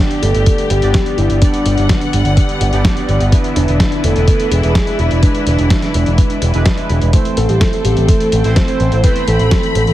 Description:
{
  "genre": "italo disco",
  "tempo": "126 BPM",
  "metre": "4/4",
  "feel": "straight",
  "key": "G major",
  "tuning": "A4 = 440 Hz",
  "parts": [
    { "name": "soft octave-layered synth lead", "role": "melody", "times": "0.0-9.9 s", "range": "D4 to C5", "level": "-18 LUFS", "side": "equal", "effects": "chorus, cassette tape, ping-pong delay" },
    { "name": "warm studio string section", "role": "sustained chords", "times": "0.0-9.9 s", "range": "D3 to B5", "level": "-21 LUFS", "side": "left 2 dB", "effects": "none" },
    { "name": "analog synth brass", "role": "stabs", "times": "0.0-9.9 s", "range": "G#3 to D5", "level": "-21 LUFS", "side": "right 4 dB", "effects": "chorus" },
    { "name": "dusty soul sampler-style drum kit", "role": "drums", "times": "0.1-9.9 s", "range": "hi-hat, snare drum", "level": "-21 LUFS", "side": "equal", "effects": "overdrive" },
    { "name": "picked electric bass with an envelope filter", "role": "bass", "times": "0.2-9.9 s", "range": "E1 to A1", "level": "-15 LUFS", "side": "equal", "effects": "tube saturation" },
    { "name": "electronic kick drum", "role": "drums", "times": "0.5-9.6 s", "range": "none", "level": "-13 LUFS", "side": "equal", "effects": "overdrive" }
  ],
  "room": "light reverb, digital ambience",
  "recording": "heavily compressed radio sound, multiband compression",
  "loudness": "-11 LUFS",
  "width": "side -14 dB against mid",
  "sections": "0.0-9.9 A section",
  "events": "none",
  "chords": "0.0 G; 3.3 E7; 7.1 Am"
}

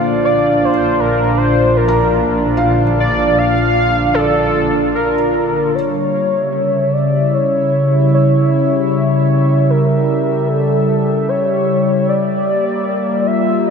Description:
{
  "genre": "ambient",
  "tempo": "76 BPM",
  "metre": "4/4",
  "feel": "straight",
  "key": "unclear",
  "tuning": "A4 = 439 Hz",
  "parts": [
    { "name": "warm analog pad", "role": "sustained chords", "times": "0.0-13.7 s", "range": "C#3 to E5", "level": "-15 LUFS", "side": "equal", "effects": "chorus" },
    { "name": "felt-muted upright piano", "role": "arpeggios", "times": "0.0-5.8 s", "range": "D5 to Bb5", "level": "-23 LUFS", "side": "equal", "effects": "ping-pong delay" },
    { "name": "bright studio double bass section", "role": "bass", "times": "0.0-5.7 s", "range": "Bb1", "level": "-20 LUFS", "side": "equal", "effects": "none" },
    { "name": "organ-like drone", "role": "drone", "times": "0.0-5.8 s", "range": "D3 to Bb3", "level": "-25 LUFS", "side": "left 1 dB", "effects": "ensemble chorus, built-in reverb" },
    { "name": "warm velvety synth lead", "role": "melody", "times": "0.2-13.7 s", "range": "A4 to F5", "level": "-17 LUFS", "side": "equal", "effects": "chorus, ping-pong delay" }
  ],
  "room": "wet lush hall reverb, RT60 3.1 s",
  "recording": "none",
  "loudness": "-12 LUFS",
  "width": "side -6 dB against mid",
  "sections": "0.0-5.7 A section; 5.7-13.7 B section",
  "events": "none",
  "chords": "0.0 Bb; 5.7 A7 (rootless); 12.1 Gm7"
}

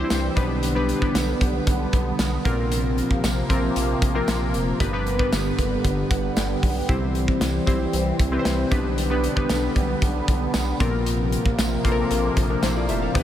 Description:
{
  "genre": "1980s-style pop",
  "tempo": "115 BPM",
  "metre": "4/4",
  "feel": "straight",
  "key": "unclear",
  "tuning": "A4 = 441 Hz",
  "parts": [
    { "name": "glassy digital keys", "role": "accompaniment", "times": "0.0-13.2 s", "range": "G2 to G5", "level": "-25 LUFS", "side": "left 1 dB", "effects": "chorus" },
    { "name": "sweeping resonant pad", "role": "sustained chords", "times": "0.0-13.2 s", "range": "C3 to C4", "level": "-26 LUFS", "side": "equal", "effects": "chorus" },
    { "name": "round analog bass", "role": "bass", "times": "0.0-13.2 s", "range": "F1 to C2", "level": "-27 LUFS", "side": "equal", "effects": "none" },
    { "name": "modern studio drum kit", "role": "drums", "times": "0.1-13.2 s", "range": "hi-hat, kick drum, snare drum", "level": "-25 LUFS", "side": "equal", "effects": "none" },
    { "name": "tambourine", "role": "percussion", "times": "0.1-12.8 s", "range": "none", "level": "-42 LUFS", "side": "right 3 dB", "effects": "none" }
  ],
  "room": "moderate huge ambient reverb, RT60 7.4 s",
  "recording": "dreamy mix soaked in reverb",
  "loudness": "-20 LUFS",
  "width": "side -11 dB against mid",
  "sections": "0.0-13.2 A section",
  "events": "synth keys fill 5.8-6.9",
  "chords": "0.4 G/B; 2.5 Bbsus2; 4.8 G; 6.9 C; 8.7 G/B; 10.8 Bbsus2"
}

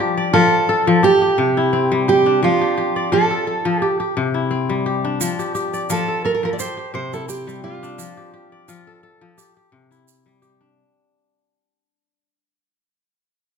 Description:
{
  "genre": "west african traditional, West African string and xylophone music",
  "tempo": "86 BPM",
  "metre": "4/4",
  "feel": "swing 54% on 16ths",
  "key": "F major",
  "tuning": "A4 = 440 Hz",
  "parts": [
    { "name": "kora", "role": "arpeggios", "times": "0.0-12.3 s", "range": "C3 to D5", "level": "-19 LUFS", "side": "left 4 dB", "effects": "none" },
    { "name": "fingerpicked steel-string acoustic guitar", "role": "melody", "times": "0.3-9.0 s", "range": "F4 to D5", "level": "-18 LUFS", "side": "right 5 dB", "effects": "none" },
    { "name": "egg shaker", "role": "percussion", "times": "5.2-10.5 s", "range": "none", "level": "-29 LUFS", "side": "right 10 dB", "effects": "none" }
  ],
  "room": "moderate recital hall reverb, RT60 1.4 s",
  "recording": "none",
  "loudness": "-16 LUFS",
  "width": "side -6 dB against mid",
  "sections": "0.0-10.8 A section",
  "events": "fade-out 0.0-10.8",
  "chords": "0.0 F; 1.0 C; 2.4 F; 3.8 C; 5.2 F; 6.6 C; 8.0 F; 9.4 C"
}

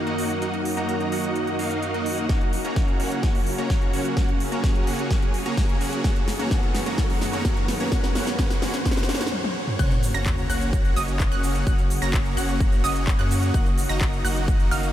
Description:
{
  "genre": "EDM, festival progressive house",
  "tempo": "128 BPM",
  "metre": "4/4",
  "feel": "straight",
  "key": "F# major",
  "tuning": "A4 = 440 Hz",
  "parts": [
    { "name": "lush unison pad", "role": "sustained chords", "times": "0.0-14.9 s", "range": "F#2 to G#4", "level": "-30 LUFS", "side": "equal", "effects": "chorus, sidechain pumping" },
    { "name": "supersaw chords", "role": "riff", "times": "0.0-14.9 s", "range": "A#3 to A#5", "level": "-28 LUFS", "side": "equal", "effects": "sidechain pumping, low-pass filter, analog delay" },
    { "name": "riser and sub drop", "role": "sound effects", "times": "2.5-11.7 s", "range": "none", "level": "-34 LUFS", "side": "equal", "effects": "none" },
    { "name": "big-room dance drum kit", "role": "drums", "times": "0.1-14.9 s", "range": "crash cymbal, handclaps, hi-hat, shaker, snare drum, toms", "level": "-31 LUFS", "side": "equal", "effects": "none" },
    { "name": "electronic kick drum", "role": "drums", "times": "2.3-14.6 s", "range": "none", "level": "-22 LUFS", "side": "equal", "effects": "none" },
    { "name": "wide unison pluck", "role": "arpeggios", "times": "9.8-14.9 s", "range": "D#6 to A#6", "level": "-31 LUFS", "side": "moving between left 3 dB and right 6 dB", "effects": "auto-pan, sidechain pumping, analog delay" },
    { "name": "saturated sub bass", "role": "bass", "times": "9.8-14.9 s", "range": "F#1 to F#2", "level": "-26 LUFS", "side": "equal", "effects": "sidechain pumping" }
  ],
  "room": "moderate huge ambient reverb, RT60 7.9 s",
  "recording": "dreamy mix soaked in reverb",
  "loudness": "-21 LUFS",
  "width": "side -12 dB against mid",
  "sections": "0.0-9.8 A section; 9.8-14.9 B section",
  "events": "build-up 0.0-9.8; drum fill 2.3-9.3, 9.3-9.8; riser 2.5-9.8; stop 9.3-9.8; drop 9.8-14.9; impact 9.8-11.7",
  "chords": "0.0 D#m/F#; 2.3 F#; 6.0 G#m7/F#; 9.8 F#; 13.5 D#m/F#"
}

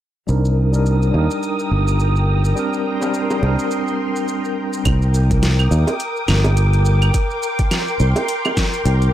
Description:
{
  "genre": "sunset chillout",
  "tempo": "105 BPM",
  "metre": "4/4",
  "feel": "swing 58% on 16ths",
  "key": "unclear",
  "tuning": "A4 = 440 Hz",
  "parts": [
    { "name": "tine electric piano", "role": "accompaniment", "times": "0.3-4.9 s", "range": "G3 to Bb4", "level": "-22 LUFS", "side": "equal", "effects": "medium stereo tremolo, auto-pan, low-pass filter, analog delay" },
    { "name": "soft string machine", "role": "sustained chords", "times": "0.6-9.1 s", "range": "Bb4 to Eb6", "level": "-24 LUFS", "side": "equal", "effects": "ensemble chorus" },
    { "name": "fingered electric bass", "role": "bass", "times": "0.3-9.1 s", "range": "G1 to Eb2", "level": "-15 LUFS", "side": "equal", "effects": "tube saturation" },
    { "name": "smooth R&B drum kit", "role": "drums", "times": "0.3-9.1 s", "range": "claves, hi-hat, shaker, snare drum", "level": "-24 LUFS", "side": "right 1 dB", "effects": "studio reverb" },
    { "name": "wind-like tuned noise texture", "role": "texture", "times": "0.8-4.9 s", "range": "Eb6", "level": "-31 LUFS", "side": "right 7 dB", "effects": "built-in reverb" },
    { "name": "bongos", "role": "percussion", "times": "3.0-8.6 s", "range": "none", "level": "-24 LUFS", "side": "right 3 dB", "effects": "none" },
    { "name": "electronic kick drum", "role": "drums", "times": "4.9-8.7 s", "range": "none", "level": "-20 LUFS", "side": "equal", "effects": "studio reverb" }
  ],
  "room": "little or no reverb",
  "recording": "dry, gritty hardware recording",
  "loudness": "-15 LUFS",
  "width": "side -12 dB against mid",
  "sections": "0.3-4.9 A section; 4.9-9.1 B section",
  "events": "filter sweep on fingered electric bass 0.3-4.9; break 3.7-4.9",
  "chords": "0.3 Ebmaj7/C; 2.6 Cm9; 4.9 Ebmaj7/C; 7.1 Bb69"
}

